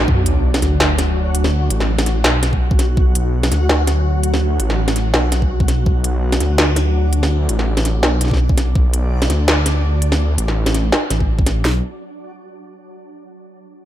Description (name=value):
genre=half-time drum and bass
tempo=166 BPM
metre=4/4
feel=swing 56% on 16ths, half-time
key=B minor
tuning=A4 = 440 Hz
part: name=dark detuned saw bass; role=bass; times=0.0-11.8 s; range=A1 to D2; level=-17 LUFS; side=equal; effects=tube saturation
part: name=backwards swelling texture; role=texture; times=0.0-11.7 s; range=F#3 to F#4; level=-26 LUFS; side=equal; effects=built-in reverb, ensemble chorus
part: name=drum and bass drum kit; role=drums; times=0.1-0.2, 2.5-3.1, 5.4-5.9, 8.3-8.8, 11.2-11.7 s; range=kick drum, snare drum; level=-16 LUFS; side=equal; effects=overdrive
part: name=sub drop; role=sound effects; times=0.1-1.5 s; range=none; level=-22 LUFS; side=equal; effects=none
part: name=industrial drum kit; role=drums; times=0.3-11.5 s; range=hi-hat, snare drum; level=-19 LUFS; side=equal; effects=none
room=light reverb, digital ambience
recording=none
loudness=-14 LUFS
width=side -12 dB against mid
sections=0.1-11.6 A section; 11.6-13.1 B section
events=impact 0.1-1.5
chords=0.1 Bm; 11.6 N.C.